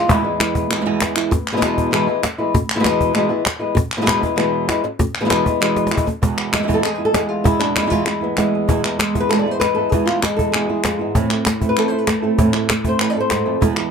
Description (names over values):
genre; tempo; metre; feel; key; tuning
flamenco; 195 BPM; 4/4; straight; E major; A4 = 440 Hz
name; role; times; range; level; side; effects
flamenco guitar; melody; 0.0-13.9 s; E2 to D5; -18 LUFS; left 2 dB; none
flamenco guitar; stabs; 0.0-1.3, 6.2-13.9 s; E2 to E4; -22 LUFS; right 7 dB; none
cajon; percussion; 0.1-13.9 s; none; -20 LUFS; left 1 dB; none
palmas hand claps; percussion; 0.1-13.9 s; none; -23 LUFS; left 1 dB; none
room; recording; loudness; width
light reverb; close, detailed microphones; -16 LUFS; side -6 dB against mid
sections
0.0-1.3 A section; 1.3-6.2 B section; 6.2-13.9 C section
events
drum fill 5.8-6.2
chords
0.0 E; 11.2 Am